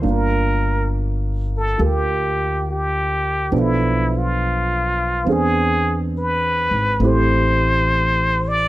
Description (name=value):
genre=jazz ballad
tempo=69 BPM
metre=4/4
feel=swing 67% on 8ths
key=unclear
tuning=A4 = 440 Hz
part: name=trumpet with plunger mute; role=melody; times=0.0-8.7 s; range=E4 to D5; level=-20 LUFS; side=equal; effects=none
part: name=warm grand piano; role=accompaniment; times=0.0-8.7 s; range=F3 to Bb4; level=-23 LUFS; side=right 4 dB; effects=none
part: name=upright bass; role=bass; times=0.0-8.7 s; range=G1 to E2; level=-21 LUFS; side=left 1 dB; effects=none
room=little or no reverb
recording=close, detailed microphones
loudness=-17 LUFS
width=side -16 dB against mid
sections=0.0-8.7 A section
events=none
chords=0.0 Gm7; 3.5 Bm7b5; 5.3 E7b13; 7.0 Am7